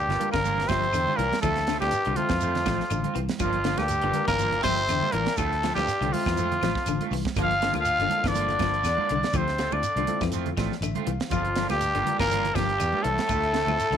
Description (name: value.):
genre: afrobeat.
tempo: 121 BPM.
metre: 4/4.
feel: swing 55% on 16ths.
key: G dorian.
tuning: A4 = 440 Hz.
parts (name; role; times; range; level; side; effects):
growling trumpet; melody; 0.0-14.0 s; F4 to F5; -26 LUFS; equal; none.
breathy tenor saxophone; second line; 0.0-14.0 s; F3 to F4; -36 LUFS; right 11 dB; none.
clear trombone section; second line; 0.0-14.0 s; F2 to F3; -36 LUFS; left 14 dB; none.
fingered electric bass; bass; 0.0-14.0 s; G1 to F2; -30 LUFS; equal; none.
barky tine electric piano; accompaniment; 0.1-14.0 s; Bb3 to F5; -37 LUFS; left 14 dB; wide subtle chorus.
electric guitar at the edge of break-up; arpeggios; 0.1-14.0 s; D3 to F3; -33 LUFS; left 12 dB; harmonic tremolo.
electric guitar at the edge of break-up; stabs; 0.1-14.0 s; F3 to F4; -36 LUFS; right 13 dB; lush chorus.
tight funk drum kit; drums; 0.1-14.0 s; hi-hat, kick drum, snare drum; -33 LUFS; right 3 dB; none.
congas; percussion; 0.1-14.0 s; none; -36 LUFS; right 13 dB; none.
shekere; percussion; 0.2-13.9 s; none; -38 LUFS; right 5 dB; none.
claves; percussion; 0.3-13.8 s; none; -41 LUFS; left 14 dB; none.
room: small room ambience.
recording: 1960s-style stereo with parts hard left and right.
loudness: -23 LUFS.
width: side -8 dB against mid.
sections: 0.0-14.0 A section.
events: tine electric piano fill 10.3-11.3.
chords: 0.0 Gm7; 1.4 Dm7; 3.4 Gm7; 5.4 Dm7; 7.4 Gm7; 9.3 Dm7; 11.3 Gm7; 13.3 Dm7.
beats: 0.44 0.94 | 1.43 1.92 2.42 2.91 | 3.40 3.90 4.39 4.88 | 5.38 5.87 6.37 6.86 | 7.36 7.85 8.34 8.84 | 9.33 9.83 10.32 10.82 | 11.31 11.80 12.30 12.79 | 13.29 13.78.